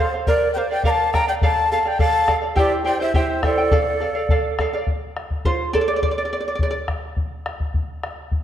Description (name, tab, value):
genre	andean folk, Andean ensemble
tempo	104 BPM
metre	2/4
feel	straight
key	unclear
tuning	A4 = 440 Hz
part	breathy large quena	melody	0.0-4.6 s	D5 to Bb5	-21 LUFS	left 2 dB	none
part	charango	accompaniment	0.0-6.8 s	E4 to G5	-23 LUFS	right 2 dB	none
part	breathy reedy pan flute	second line	0.3-4.6 s	G4 to G5	-25 LUFS	right 4 dB	none
part	bombo	percussion	0.3-8.4 s	none	-23 LUFS	left 1 dB	none
room	wet scoring stage reverb, RT60 1.5 s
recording	dark, warm production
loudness	-18 LUFS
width	side -10 dB against mid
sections	0.0-4.9 A section; 4.9-8.4 B section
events	charango solo 4.9-8.4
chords	0.3 Bb; 1.4 Dm; 2.6 C; 3.7 Dm; 4.9 F5; 6.0 N.C.